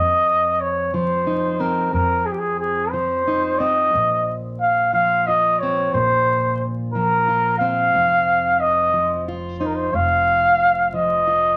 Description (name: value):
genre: acoustic folk duo or small band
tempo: 60 BPM (dotted quarters)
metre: 6/8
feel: straight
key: unclear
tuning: A4 = 439 Hz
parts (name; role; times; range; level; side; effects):
- warm flugelhorn; melody; 0.0-11.6 s; G4 to F5; -20 LUFS; equal; none
- fingerpicked plugged-in steel-string acoustic guitar; accompaniment; 0.0-11.6 s; F2 to F4; -29 LUFS; equal; none
- upright bass; bass; 0.0-11.6 s; F1 to F2; -35 LUFS; equal; none
room: wet club reverb, RT60 0.7 s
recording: vinyl crackle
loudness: -19 LUFS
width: mono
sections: 0.0-11.6 A section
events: none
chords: 0.0 F5; 3.9 Bbsus2; 7.9 F7(no3)